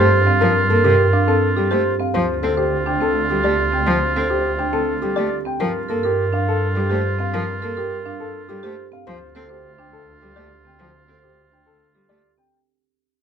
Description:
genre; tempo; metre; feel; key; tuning
classical, minimalist pattern music; 104 BPM; 3/4; straight; unclear; A4 = 440 Hz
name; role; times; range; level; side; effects
dark baby grand piano; melody; 0.0-12.6 s; G4 to G5; -23 LUFS; left 9 dB; none
clear oboe; second line; 0.0-12.3 s; F4; -23 LUFS; right 3 dB; none
rich cello; accompaniment; 0.0-12.2 s; C3 to C4; -25 LUFS; equal; none
marimba with medium mallets; arpeggios; 0.0-12.6 s; C4 to C5; -23 LUFS; right 11 dB; none
warm symphonic double bass section; bass; 0.0-12.4 s; D2 to G2; -22 LUFS; equal; none
room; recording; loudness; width
light reverb; close, detailed microphones; -16 LUFS; side -8 dB against mid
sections
0.0-12.5 A section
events
fade-out 0.0-12.5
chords
0.0 Gm11; 2.1 Dm7; 5.6 Gm9; 9.1 Dm7

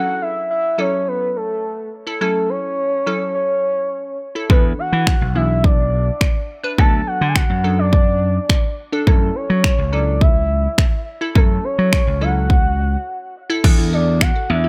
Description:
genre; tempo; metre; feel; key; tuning
dance-pop; 105 BPM; 4/4; straight; F# minor; A4 = 440 Hz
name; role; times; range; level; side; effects
soft octave-layered synth lead; melody; 0.0-14.7 s; A4 to A5; -24 LUFS; equal; chorus, tape echo
glassy wavetable pluck; accompaniment; 0.0-14.2 s; E3 to B4; -27 LUFS; equal; chorus, sidechain pumping
slap bass; bass; 4.5-14.7 s; B1 to F#3; -21 LUFS; equal; sidechain pumping
house drum kit; drums; 4.5-14.3 s; crash cymbal, finger snaps, kick drum; -17 LUFS; equal; none
glassy wavetable pluck; arpeggios; 13.6-14.7 s; D4 to A4; -32 LUFS; equal; chorus, sidechain pumping
room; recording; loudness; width
little or no reverb; none; -18 LUFS; mono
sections
0.0-13.6 A section; 13.6-14.7 B section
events
break 13.1-13.6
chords
0.0 F#m7; 4.5 E7sus4; 6.8 Bm7/D; 9.1 F#m7; 13.6 E7sus4

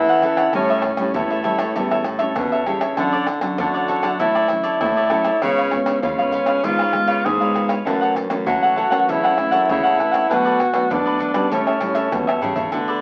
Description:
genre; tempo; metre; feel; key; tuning
samba and choro; 98 BPM; 4/4; straight; A major; A4 = 440 Hz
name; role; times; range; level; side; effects
breathy tenor saxophone; second line; 0.0-12.4 s; C#4 to G#4; -23 LUFS; equal; none
cavaquinho; accompaniment; 0.0-13.0 s; D4 to F#5; -24 LUFS; equal; none
nylon-string guitar; accompaniment; 0.0-13.0 s; F#2 to A4; -30 LUFS; equal; none
warm baritone saxophone; bass; 0.0-13.0 s; E2 to F#3; -26 LUFS; equal; none
maracas, pandeiro, tamborim and surdo; percussion; 0.1-13.0 s; none; -30 LUFS; equal; none
room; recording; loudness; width
wet small room reverb, RT60 0.5 s; very old 78 rpm record, vinyl crackle; -19 LUFS; mono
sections
0.0-12.7 A section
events
tenor saxophone solo 0.0-12.7; drum fill 12.3-12.7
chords
0.0 F#m7; 0.5 A7; 3.0 Dmaj9; 5.4 C#7; 7.9 F#m7; 10.3 Bm7; 11.5 A7

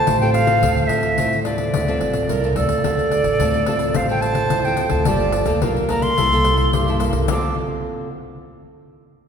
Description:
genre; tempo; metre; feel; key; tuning
samba and choro; 108 BPM; 4/4; straight; D minor; A4 = 439 Hz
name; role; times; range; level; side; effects
silver concert flute; melody; 0.0-7.6 s; D5 to D6; -21 LUFS; equal; none
clear clarinet; second line; 0.0-7.5 s; G4 to D5; -25 LUFS; right 7 dB; none
nylon-string guitar; accompaniment; 0.0-8.1 s; G2 to A4; -24 LUFS; left 1 dB; none
upright bass; bass; 0.1-7.5 s; G1 to D2; -23 LUFS; equal; none
pandeiro; percussion; 0.1-7.4 s; none; -25 LUFS; left 4 dB; none
room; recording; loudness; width
wet concert hall reverb, RT60 2.5 s; recorded in a church or concert hall; -16 LUFS; side -7 dB against mid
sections
0.0-2.8 A section; 2.8-7.3 B section; 7.3-9.3 C section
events
none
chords
0.0 Dm7; 5.1 Gm9; 6.2 C6; 7.3 Dm7

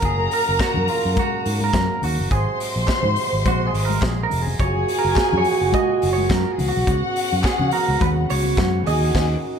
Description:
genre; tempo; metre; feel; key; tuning
disco; 105 BPM; 4/4; swing 56% on 16ths; unclear; A4 = 440 Hz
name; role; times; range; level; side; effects
dark studio string section; second line; 0.0-9.1 s; Gb4 to C6; -24 LUFS; left 2 dB; none
clean electric guitar; accompaniment; 0.0-9.6 s; F4 to Eb5; -26 LUFS; right 6 dB; none
mellow French horn section; sustained chords; 0.0-9.6 s; C3 to Gb4; -25 LUFS; right 2 dB; none
fingered electric bass; bass; 0.0-9.3 s; F1 to Db3; -23 LUFS; equal; none
modern studio drum kit; drums; 0.0-9.3 s; crash cymbal, hi-hat, kick drum, snare drum; -25 LUFS; equal; none
congas; percussion; 0.2-9.1 s; none; -30 LUFS; left 5 dB; none
group handclap; percussion; 0.6-8.7 s; none; -39 LUFS; left 3 dB; none
room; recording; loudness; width
moderate large studio reverb, RT60 1.4 s; dark, warm production; -17 LUFS; side -7 dB against mid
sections
0.0-9.6 A section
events
clean electric guitar solo 0.0-9.6; band accent 9.1-9.6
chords
0.0 Gb; 2.3 Ab7; 4.6 Gbmaj7; 6.6 Db7sus4; 8.9 Ebm7

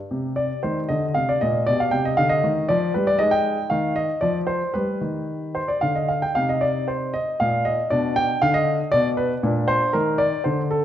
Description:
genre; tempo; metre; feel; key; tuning
classical-period piano sonatina; 110-120 BPM; 3/4; rubato; C minor; A4 = 441 Hz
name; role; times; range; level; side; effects
warm baby grand piano; solo; 0.1-10.8 s; Bb2 to G5; -19 LUFS; equal; none
room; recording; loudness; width
moderate recital hall reverb, RT60 1.4 s; dark, warm production; -19 LUFS; side -10 dB against mid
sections
0.1-10.8 A section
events
none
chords
0.1 Cm; 1.7 G/B; 3.2 Ab5; 4.2 N.C.; 4.7 G; 6.4 Cm; 7.9 Bm; 9.4 Bb; 9.9 N.C.

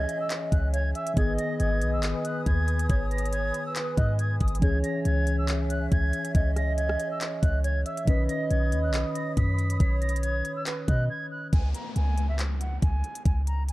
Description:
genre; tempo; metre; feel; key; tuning
hip hop, trap; 139 BPM; 4/4; half-time; C# dorian; A4 = 441 Hz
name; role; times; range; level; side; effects
silver concert flute; melody; 0.0-13.7 s; E5 to B6; -35 LUFS; right 1 dB; low-pass filter
hollow clarinet-like synth lead; second line; 0.0-11.1 s; B4 to E5; -33 LUFS; right 3 dB; chorus, tape echo
mellow tine electric piano; accompaniment; 0.0-11.5 s; D#3 to B4; -32 LUFS; left 2 dB; medium stereo tremolo, low-pass filter
breathy large flute ensemble; sustained chords; 0.0-11.5 s; B4 to D#6; -38 LUFS; left 1 dB; none
warm 808-style bass; bass; 0.0-13.7 s; G#1 to B2; -26 LUFS; equal; none
downlifter; sound effects; 0.1-1.2, 11.5-13.7 s; none; -41 LUFS; left 3 dB; none
trap drum kit; drums; 0.1-13.7 s; handclaps, hi-hat, kick drum, rim click; -27 LUFS; equal; none
room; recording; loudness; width
little or no reverb; dark, warm production; -24 LUFS; side -18 dB against mid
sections
0.0-11.5 A section; 11.5-13.7 B section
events
break 11.1-11.5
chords
0.0 C#m; 1.2 G#m; 4.6 C#m; 8.1 Badd9; 11.5 C#5

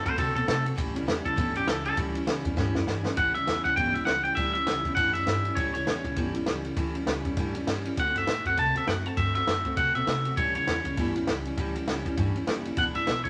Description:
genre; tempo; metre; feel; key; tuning
rockabilly; 200 BPM; 4/4; swing 60% on 8ths; A mixolydian; A4 = 442 Hz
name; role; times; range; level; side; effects
twangy electric guitar; melody; 0.0-13.3 s; G4 to A5; -29 LUFS; equal; none
picked steel-string acoustic guitar; accompaniment; 0.0-13.3 s; E2 to F#4; -35 LUFS; equal; none
upright bass; bass; 0.1-13.3 s; E1 to C3; -36 LUFS; equal; none
compact cocktail drum kit; drums; 0.1-13.3 s; kick drum, ride cymbal, snare drum; -33 LUFS; equal; none
room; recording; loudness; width
moderate club reverb, RT60 0.7 s; none; -27 LUFS; mono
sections
0.0-3.2 A section; 3.2-13.3 B section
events
clean electric guitar solo 0.0-3.2; drum fill 2.6-3.2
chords
0.0 D7; 0.8 A7; 8.0 D7; 10.4 A7; 12.8 E7

